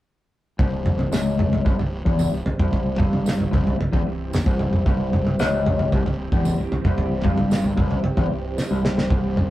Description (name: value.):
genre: psychedelic rock.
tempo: 113 BPM.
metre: 4/4.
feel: straight.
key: C major.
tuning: A4 = 442 Hz.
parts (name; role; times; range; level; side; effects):
string machine, violas; sustained chords; 0.6-9.5 s; E3 to G4; -32 LUFS; right 3 dB; phaser, ensemble chorus.
electric guitar through a small old amp; riff; 0.6-9.5 s; C2 to G2; -22 LUFS; left 1 dB; harmonic tremolo.
fuzz fingered electric bass; bass; 0.6-9.5 s; C1 to G1; -31 LUFS; equal; overdrive.
cloth-damped thuddy drum kit; drums; 0.6-9.5 s; kick drum, snare drum, toms; -21 LUFS; equal; none.
tambourine; percussion; 1.1-8.7 s; none; -42 LUFS; right 6 dB; none.
room: light reverb.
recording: rough rehearsal-room recording.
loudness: -19 LUFS.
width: side -15 dB against mid.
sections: 0.6-9.5 A section.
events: drum fill 8.6-9.1.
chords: 0.6 C.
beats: | 0.60 1.13 1.67 2.20 | 2.73 3.27 3.80 4.33 | 4.86 5.39 5.93 6.46 | 6.99 7.52 8.05 8.58 | 9.11.